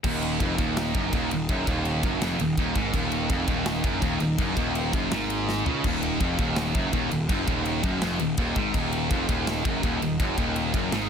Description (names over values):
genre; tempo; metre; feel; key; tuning
heavy metal; 165 BPM; 4/4; straight; Eb minor; A4 = 439 Hz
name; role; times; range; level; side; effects
distorted electric guitar; riff; 0.0-11.1 s; Eb2 to Db3; -30 LUFS; equal; distortion
heavy high-gain guitar; riff; 0.0-11.1 s; Eb2 to Db3; -30 LUFS; right 13 dB; distortion
high-gain distorted guitar; riff; 0.0-11.1 s; Eb2 to Db3; -31 LUFS; left 13 dB; distortion
fuzz picked electric bass; bass; 0.0-11.1 s; Eb1 to Db2; -31 LUFS; equal; overdrive
tight metal drum kit; drums; 0.0-11.0 s; crash cymbal, kick drum, ride cymbal, snare drum, toms; -29 LUFS; equal; none
pipe organ, principal chorus; sustained chords; 0.1-11.1 s; Eb3 to Eb4; -38 LUFS; right 1 dB; none
room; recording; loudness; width
light reverb; dense, heavily limited modern master; -23 LUFS; side -7 dB against mid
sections
0.0-11.1 A section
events
half time 0.0-11.1; drum fill 5.5-5.8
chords
0.0 Ebm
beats
| 0.04 0.40 0.77 1.13 | 1.49 1.85 2.21 2.58 | 2.94 3.30 3.67 4.03 | 4.39 4.75 5.12 5.48 | 5.84 6.21 6.57 6.93 | 7.30 7.66 8.02 8.38 | 8.75 9.11 9.47 9.84 | 10.20 10.56 10.92